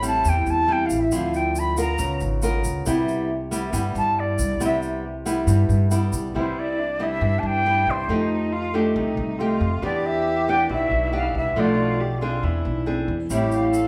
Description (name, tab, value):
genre	bossa nova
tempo	138 BPM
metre	4/4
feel	straight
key	C major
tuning	A4 = 440 Hz
part	jazz flute	melody	0.0-13.9 s	C5 to B5	-26 LUFS	equal	none
part	nylon-string guitar	accompaniment	0.0-13.9 s	G2 to Bb4	-26 LUFS	equal	none
part	upright bass	bass	0.0-13.9 s	Ab1 to G2	-28 LUFS	equal	none
part	tube shaker	percussion	0.0-6.3, 13.3-13.9 s	none	-38 LUFS	equal	none
part	warm cello	second line	6.3-13.9 s	D4 to A4	-32 LUFS	equal	none
room	wet large studio reverb, RT60 0.9 s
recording	band playing live in one room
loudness	-22 LUFS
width	mono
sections	0.0-6.3 A section; 6.3-13.9 B section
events	flute solo 0.0-6.3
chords	0.0 Am7; 1.1 Dm9; 2.0 Db6; 2.9 Cmaj7; 8.1 F9; 9.8 Em7; 11.6 Bm7b5; 12.4 E7b13; 13.3 Am7